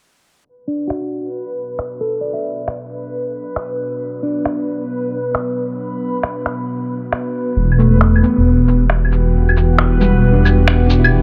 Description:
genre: future garage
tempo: 135 BPM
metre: 4/4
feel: swing 66% on 16ths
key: unclear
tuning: A4 = 440 Hz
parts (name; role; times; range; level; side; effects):
- warbly tape-like pad; sustained chords; 0.5-11.2 s; B2 to G4; -26 LUFS; equal; chorus, built-in reverb, vintage 12-bit sampler grit
- backwards swelling texture; texture; 1.3-11.2 s; B4; -28 LUFS; equal; built-in reverb
- mellow electric guitar; accompaniment; 0.7-4.8, 7.8-11.2 s; G3 to E5; -22 LUFS; equal; low-pass filter, digital delay
- electronic finger snaps, claves and shaker; drums; 0.9-11.1 s; none; -22 LUFS; equal; none
- dark detuned saw bass; bass; 7.6-11.2 s; E1; -15 LUFS; equal; tube saturation
room: digital ambience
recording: low-pass filter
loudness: -17 LUFS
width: mono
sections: 0.5-11.2 A section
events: fade-in on ambient pad 0.5-11.2; filter sweep on clean electric guitar 0.5-11.2; filter sweep 0.5-11.2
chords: 0.5 Bm; 7.6 Em7

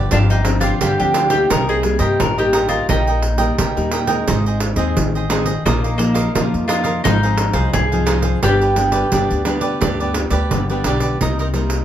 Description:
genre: samba and choro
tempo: 87 BPM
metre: 4/4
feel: straight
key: C minor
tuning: A4 = 440 Hz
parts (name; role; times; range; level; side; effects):
- cavaquinho; accompaniment; 0.0-11.8 s; D4 to G5; -23 LUFS; right 4 dB; none
- nylon-string guitar; accompaniment; 0.0-11.8 s; G2 to Eb4; -22 LUFS; left 3 dB; none
- upright bass; bass; 0.0-11.8 s; G1 to G2; -20 LUFS; equal; none
- mandolin; second line; 0.1-10.5 s; Bb3 to Bb4; -20 LUFS; left 1 dB; none
- pandeiro; percussion; 0.1-11.8 s; none; -23 LUFS; right 3 dB; none
room: moderate small room reverb, RT60 0.6 s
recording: none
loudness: -15 LUFS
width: side -10 dB against mid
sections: 0.0-11.2 A section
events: mandolin solo 0.0-11.2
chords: 0.1 G7sus4; 1.5 Cm7; 2.9 Eb/Bb; 4.3 Ab; 5.7 Bbsus4; 7.0 Fm7/Ab; 8.4 G; 11.2 Cm7

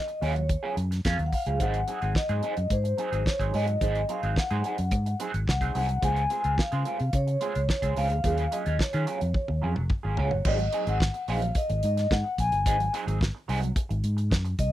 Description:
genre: disco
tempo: 108 BPM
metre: 4/4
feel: straight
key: unclear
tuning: A4 = 438 Hz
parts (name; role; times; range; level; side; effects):
- vibraphone with soft mallets; melody; 0.0-14.7 s; C5 to Ab5; -30 LUFS; left 1 dB; none
- electric guitar at the edge of break-up; accompaniment; 0.1-14.5 s; Gb3 to Ab4; -33 LUFS; right 5 dB; wah, harmonic tremolo
- damped 70s drum kit; drums; 0.1-14.7 s; crash cymbal, hi-hat, kick drum, snare drum, toms; -29 LUFS; equal; none
- fingered electric bass; bass; 0.2-14.7 s; F1 to Eb3; -27 LUFS; equal; none
room: little or no reverb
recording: dry, close 1970s-style studio recording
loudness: -24 LUFS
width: side -13 dB against mid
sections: 0.0-1.6 A section; 1.6-10.5 B section; 10.5-14.7 C section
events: drum fill 9.3-10.5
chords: 0.0 Ebm11; 1.6 Ab7; 6.0 Dbmaj7; 8.2 Ebm11; 10.5 Ab7

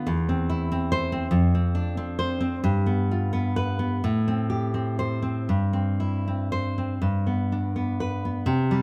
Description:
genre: romantic piece for solo classical guitar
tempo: 38-48 BPM (dotted quarters)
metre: 6/8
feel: rubato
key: C major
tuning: A4 = 440 Hz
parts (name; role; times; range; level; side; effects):
- nylon-string guitar; solo; 0.0-8.8 s; E2 to C5; -25 LUFS; equal; none
room: moderate recital hall reverb, RT60 1.7 s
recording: none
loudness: -25 LUFS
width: mono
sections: 0.0-8.5 A section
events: none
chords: 0.1 C/E; 1.4 Dm7/F; 2.7 G7; 4.1 Am7; 5.5 C/G; 7.0 G

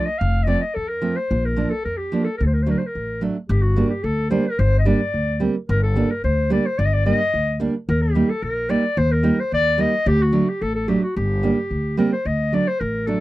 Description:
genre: klezmer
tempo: 110 BPM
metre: 2/4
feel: straight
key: G harmonic minor from 3.5 s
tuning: A4 = 442 Hz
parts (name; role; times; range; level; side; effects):
- clear clarinet; melody; 0.0-13.2 s; F#4 to F5; -23 LUFS; left 1 dB; none
- nylon-string guitar; accompaniment; 0.0-13.2 s; F3 to Eb4; -20 LUFS; right 3 dB; none
- upright bass; bass; 0.2-13.1 s; F1 to F2; -21 LUFS; left 1 dB; none
room: little or no reverb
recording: dry, close 1970s-style studio recording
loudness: -18 LUFS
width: side -17 dB against mid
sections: 0.0-3.5 A section; 3.5-12.3 B section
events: none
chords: 0.0 F; 1.3 Bb; 2.4 D; 3.5 Gm; 7.9 Eb; 10.1 D; 11.2 Gm; 12.3 D

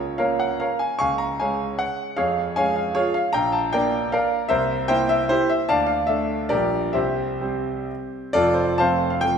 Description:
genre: classical, romantic triple-time dance for piano with dotted rhythms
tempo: 121-166 BPM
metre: 3/4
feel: rubato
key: F major from 3.4 s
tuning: A4 = 441 Hz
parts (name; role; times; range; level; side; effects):
- clear concert grand piano; solo; 0.0-9.4 s; F1 to Db6; -20 LUFS; equal; none
room: moderate scoring stage reverb, RT60 1.6 s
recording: minimal, uncompressed stereo recording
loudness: -20 LUFS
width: side -7 dB against mid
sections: 0.0-8.4 A section; 8.4-9.4 B section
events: none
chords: 0.0 Bbm/Db; 2.2 Db/F; 3.4 Gm7/Bb; 4.5 C7; 5.7 Dm; 6.5 Gm7/Bb; 7.0 C; 8.4 F

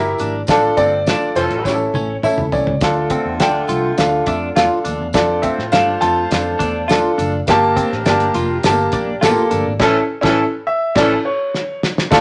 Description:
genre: uptempo 1960s-style soul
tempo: 103 BPM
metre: 4/4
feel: straight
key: D minor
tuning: A4 = 440 Hz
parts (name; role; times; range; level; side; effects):
- clear grand piano; accompaniment; 0.0-12.2 s; A3 to A5; -20 LUFS; equal; none
- direct-recorded clean electric guitar; riff; 0.0-9.7 s; C4 to F4; -25 LUFS; equal; phaser
- vintage muted picked electric bass; bass; 0.0-12.2 s; F1 to A2; -28 LUFS; equal; none
- congas; percussion; 0.0-9.7 s; none; -36 LUFS; equal; none
- cloth-damped thuddy drum kit; drums; 0.2-12.2 s; crash cymbal, hi-hat, kick drum, snare drum, toms; -22 LUFS; equal; none
- tambourine; percussion; 0.2-12.2 s; none; -40 LUFS; equal; none
- warm horn section; second line; 0.5-11.1 s; D3 to C5; -26 LUFS; equal; none
- warm grand piano; melody; 0.8-6.8, 10.7-11.8 s; C5 to A5; -22 LUFS; equal; none
room: moderate studio reverb, RT60 0.8 s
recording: nothing above 10.9 kHz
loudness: -17 LUFS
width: mono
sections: 0.0-2.8 A section; 2.8-12.1 B section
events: drum fill 1.6-2.8, 11.5-12.1; band accent 9.8-12.1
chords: 0.5 Dm; 1.6 A; 2.8 Dm; 5.1 F6; 7.5 Gmadd9; 9.8 A

